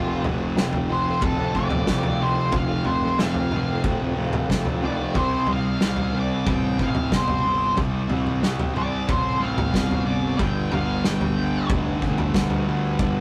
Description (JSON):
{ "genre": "quiet-loud alternative rock", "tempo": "92 BPM", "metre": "4/4", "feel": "straight", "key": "unclear", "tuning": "A4 = 439 Hz", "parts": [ { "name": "octave-fuzz lead guitar", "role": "melody", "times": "0.0-11.7 s", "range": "F4 to G5", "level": "-30 LUFS", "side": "equal", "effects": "distortion" }, { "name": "electric guitar through a small old amp", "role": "arpeggios", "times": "0.0-5.1 s", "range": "F2 to F4", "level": "-32 LUFS", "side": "equal", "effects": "tremolo" }, { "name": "fuzz guitar", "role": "riff", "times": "0.0-13.2 s", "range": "F2 to C4", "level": "-32 LUFS", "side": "equal", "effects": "distortion" }, { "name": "thick fuzz guitar", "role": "riff", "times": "0.0-13.2 s", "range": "F2 to C4", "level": "-28 LUFS", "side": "equal", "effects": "distortion" }, { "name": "fuzz picked electric bass", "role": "bass", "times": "0.0-13.2 s", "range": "D1 to D2", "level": "-32 LUFS", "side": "equal", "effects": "overdrive" }, { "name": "loose indie drum kit", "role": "drums", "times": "0.2-13.1 s", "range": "kick drum, snare drum, toms", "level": "-28 LUFS", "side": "equal", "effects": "none" } ], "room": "moderate studio reverb, RT60 0.5 s", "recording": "rough rehearsal-room recording, warm saturation", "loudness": "-23 LUFS", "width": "mono", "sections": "0.0-13.2 A section", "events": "lead electric guitar solo 0.0-13.2", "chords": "0.0 F; 5.2 C5; 10.4 G5", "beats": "0.57 1.23 1.89 | 2.54 3.20 3.86 4.51 | 5.17 5.82 6.48 7.13 | 7.79 8.44 9.09 9.74 | 10.39 11.05 11.70 12.35 | 13.00" }